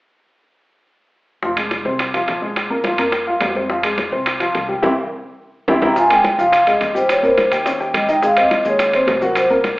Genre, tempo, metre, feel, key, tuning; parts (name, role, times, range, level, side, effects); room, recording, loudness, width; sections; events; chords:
Afro-Cuban jazz; 212 BPM; 4/4; straight; F minor; A4 = 440 Hz
dark grand piano; accompaniment; 1.4-9.7 s; F3 to G5; -19 LUFS; left 1 dB
upright bass; bass; 1.4-9.7 s; F1 to F2; -35 LUFS; equal
bongos; percussion; 1.4-9.8 s; -27 LUFS; left 1 dB
congas; percussion; 1.4-9.8 s; -32 LUFS; equal
timbales; percussion; 1.6-9.8 s; -22 LUFS; right 1 dB
vibraphone with soft mallets; melody; 5.7-9.8 s; Bb4 to Bb5; -15 LUFS; equal
maracas; percussion; 6.0-9.8 s; -40 LUFS; equal
moderate large studio reverb, RT60 1.1 s; band playing live in one room, telephone sound; -14 LUFS; side -20 dB against mid
1.4-6.0 A section; 6.0-9.8 B section
band accent 4.8-6.0; drum fill 5.5-6.0
1.4 Fm; 2.6 Bb5; 3.7 Fmadd9; 4.8 C; 6.0 Fm9; 7.1 Eb6; 8.2 Ab